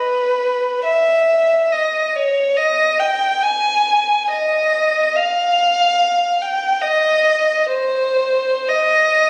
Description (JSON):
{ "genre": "classical, free, expressive piece for unaccompanied violin", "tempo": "52-73 BPM", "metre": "4/4", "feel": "rubato", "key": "unclear", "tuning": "A4 = 440 Hz", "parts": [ { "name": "dark violin", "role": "solo", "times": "0.0-9.3 s", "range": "B4 to G#5", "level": "-17 LUFS", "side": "equal", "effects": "none" } ], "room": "moderate scoring stage reverb, RT60 1.4 s", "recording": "recorded on a phone in the room, studio reverb, compression", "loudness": "-17 LUFS", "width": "mono", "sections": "0.0-9.3 A section", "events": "none", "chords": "none", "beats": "0.83 | 1.72 2.57 3.42 4.30 | 5.15 6.00 6.82 7.68 | 8.69" }